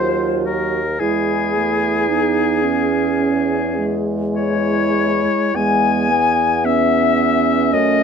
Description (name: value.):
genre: classical, slow romantic movement for wind quintet.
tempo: 50-56 BPM.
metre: 4/4.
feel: rubato.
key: C# minor.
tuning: A4 = 439 Hz.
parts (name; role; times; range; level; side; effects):
hollow concert flute; melody; 0.0-8.0 s; G#4 to G#5; -23 LUFS; left 8 dB; none.
bright oboe; second line; 0.0-8.0 s; G#4 to G#5; -20 LUFS; left 5 dB; none.
mellow French horn; accompaniment; 0.0-8.0 s; Gb3 to C#4; -23 LUFS; left 1 dB; none.
mellow clarinet; accompaniment; 0.0-8.0 s; B3 to Gb4; -22 LUFS; right 11 dB; none.
mellow bassoon; bass; 0.0-8.0 s; Eb2 to F#2; -22 LUFS; right 4 dB; none.
room: light reverb.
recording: dark, warm production.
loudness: -15 LUFS.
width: side -6 dB against mid.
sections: 0.0-8.0 A section.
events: none.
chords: 0.0 Cdim/Eb; 1.0 C#m/E; 5.5 E.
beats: | 1.01 2.09 3.18 4.36 | 5.55 6.65 7.73.